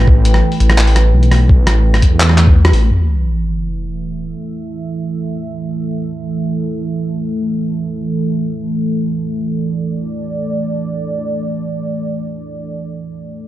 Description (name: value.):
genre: half-time drum and bass.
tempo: free time.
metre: none.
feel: none.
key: unclear.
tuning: A4 = 440 Hz.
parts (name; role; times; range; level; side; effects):
dark analog pad; sustained chords; 0.0-13.5 s; E3 to G5; -19 LUFS; right 2 dB; chorus, sidechain pumping.
dark detuned saw bass; bass; 0.0-2.9 s; A1 to E2; -11 LUFS; equal; none.
electronic kick drum; drums; 0.1-2.5 s; none; -10 LUFS; equal; none.
boom bap sampler-style drum kit; drums; 0.3-2.8 s; handclaps, hi-hat, rim click; -18 LUFS; equal; none.
sub drop; sound effects; 2.9-4.3 s; none; -18 LUFS; equal; none.
room: light reverb.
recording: dark, warm production.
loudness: -13 LUFS.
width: side -14 dB against mid.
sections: 0.0-2.9 A section; 2.9-13.5 B section.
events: drop 0.0-2.9; band accent 2.6; impact 2.9-4.3.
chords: 0.0 A5.